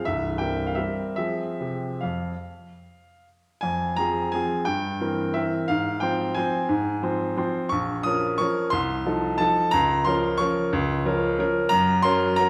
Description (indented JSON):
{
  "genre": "classical, piano waltz",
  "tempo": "142-193 BPM",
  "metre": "3/4",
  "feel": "rubato",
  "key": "F minor",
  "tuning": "A4 = 440 Hz",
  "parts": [
    { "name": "clear baby grand piano", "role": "solo", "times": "0.0-12.5 s", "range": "C1 to Eb6", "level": "-24 LUFS", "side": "equal", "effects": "none" }
  ],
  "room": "wet recital hall reverb, RT60 1.5 s",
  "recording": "heard from further back in the room",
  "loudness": "-25 LUFS",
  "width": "mono",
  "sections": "0.0-3.6 A section; 3.6-12.5 B section",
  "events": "none",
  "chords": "0.1 C7; 1.2 Fm; 4.7 C7/G; 5.7 Fm/Ab; 7.7 Bbm; 8.7 F7/C; 9.7 Bbm/Db; 11.7 Gb"
}